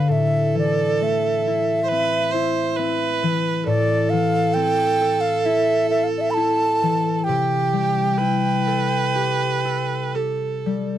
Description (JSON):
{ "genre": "celtic folk, Celtic slow air", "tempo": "58-68 BPM", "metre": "4/4", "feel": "rubato", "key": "unclear", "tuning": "A4 = 441 Hz", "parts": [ { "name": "bright baroque flute", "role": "melody", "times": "0.0-10.1 s", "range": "D5 to B5", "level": "-22 LUFS", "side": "right 1 dB", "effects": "none" }, { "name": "clear viola", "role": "second line", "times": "0.0-11.0 s", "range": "G4 to C5", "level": "-23 LUFS", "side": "right 6 dB", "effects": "none" }, { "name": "concert harp", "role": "accompaniment", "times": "0.0-11.0 s", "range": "G2 to A4", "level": "-23 LUFS", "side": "left 4 dB", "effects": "none" } ], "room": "little or no reverb", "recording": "dry, close 1970s-style studio recording", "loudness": "-18 LUFS", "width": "side -11 dB against mid", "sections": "0.0-11.0 A section", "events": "none", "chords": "0.1 Am; 7.3 C6" }